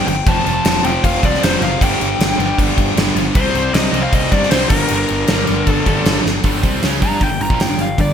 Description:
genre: hard rock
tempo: 155 BPM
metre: 4/4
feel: straight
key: G minor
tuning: A4 = 440 Hz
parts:
  - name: biting lead guitar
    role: melody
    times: 0.0-8.1 s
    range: Bb4 to Bb5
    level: -20 LUFS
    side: left 2 dB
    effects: overdrive, ping-pong delay
  - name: cranked stack guitar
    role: riff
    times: 0.0-8.1 s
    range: F2 to G4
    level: -20 LUFS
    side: equal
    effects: overdrive
  - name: fuzz picked electric bass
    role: bass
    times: 0.1-8.1 s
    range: F1 to G2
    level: -21 LUFS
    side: equal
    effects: overdrive
  - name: gated 80s drum kit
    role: drums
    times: 0.1-8.1 s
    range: crash cymbal, hi-hat, kick drum, snare drum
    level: -16 LUFS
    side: equal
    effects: gated reverb
room: moderate plate reverb, RT60 1.8 s, studio ambience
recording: bright 1980s-style digital production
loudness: -13 LUFS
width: side -8 dB against mid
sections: 0.0-6.4 A section; 6.4-8.1 B section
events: drum fill 6.3; lead electric guitar solo 6.4-8.1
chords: 0.3 F; 1.8 G5; 3.4 C5; 4.7 Gm

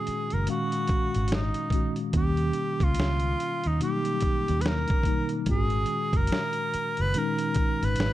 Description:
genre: R&B, neo-soul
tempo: 72 BPM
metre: 4/4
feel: swing 61% on 16ths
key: unclear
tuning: A4 = 441 Hz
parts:
  - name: breathy tenor saxophone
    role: melody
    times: 0.0-8.1 s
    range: Eb4 to Cb5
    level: -29 LUFS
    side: equal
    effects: none
  - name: mellow tine electric piano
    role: accompaniment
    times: 0.0-8.1 s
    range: Bb2 to F5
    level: -30 LUFS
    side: left 1 dB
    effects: medium stereo tremolo
  - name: vintage muted fingered electric bass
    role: bass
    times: 0.1-8.1 s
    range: Gb1 to Eb2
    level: -27 LUFS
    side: equal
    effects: none
  - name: dusty soul sampler-style drum kit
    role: drums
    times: 0.1-8.1 s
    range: hi-hat, kick drum, snare drum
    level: -28 LUFS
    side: equal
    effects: none
room: little or no reverb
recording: dark, warm production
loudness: -24 LUFS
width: side -14 dB against mid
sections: 0.0-8.1 A section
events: none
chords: 0.0 Absus2; 2.1 Eb7b13; 5.5 Ab7sus2

